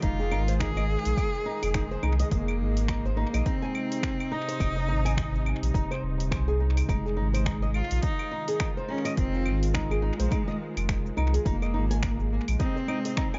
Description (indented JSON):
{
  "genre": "organic downtempo",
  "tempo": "105 BPM",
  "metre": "4/4",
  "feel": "swing 59% on 16ths",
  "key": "F minor",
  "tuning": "A4 = 442 Hz",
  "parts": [
    { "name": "rich cello", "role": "melody", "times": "0.0-13.4 s", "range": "Ab3 to Ab4", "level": "-35 LUFS", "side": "equal", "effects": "dub echo" },
    { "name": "bowed-like drone", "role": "sustained chords", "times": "0.0-13.4 s", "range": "C3 to F4", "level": "-38 LUFS", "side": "equal", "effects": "built-in reverb, sidechain pumping" },
    { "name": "flamenco guitar", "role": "arpeggios", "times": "0.0-13.4 s", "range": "Eb4 to Ab5", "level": "-37 LUFS", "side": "equal", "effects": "dub echo" },
    { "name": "warm sub bass", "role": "bass", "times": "0.0-12.6 s", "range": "Eb1 to C2", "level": "-30 LUFS", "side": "equal", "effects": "sidechain pumping" },
    { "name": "deep house drum kit", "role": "drums", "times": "0.0-13.4 s", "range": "claves, finger snaps, hi-hat, shaker", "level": "-39 LUFS", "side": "equal", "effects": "overdrive, tape echo" },
    { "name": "electronic kick drum", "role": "drums", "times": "0.0-13.3 s", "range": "none", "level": "-32 LUFS", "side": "equal", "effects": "overdrive" }
  ],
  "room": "light reverb",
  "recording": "echo-heavy mix, nothing above 7.5 kHz",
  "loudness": "-27 LUFS",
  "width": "mono",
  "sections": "0.0-13.4 A section",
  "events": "none",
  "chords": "0.0 Fm7; 2.3 Ab/F; 6.9 Fm7"
}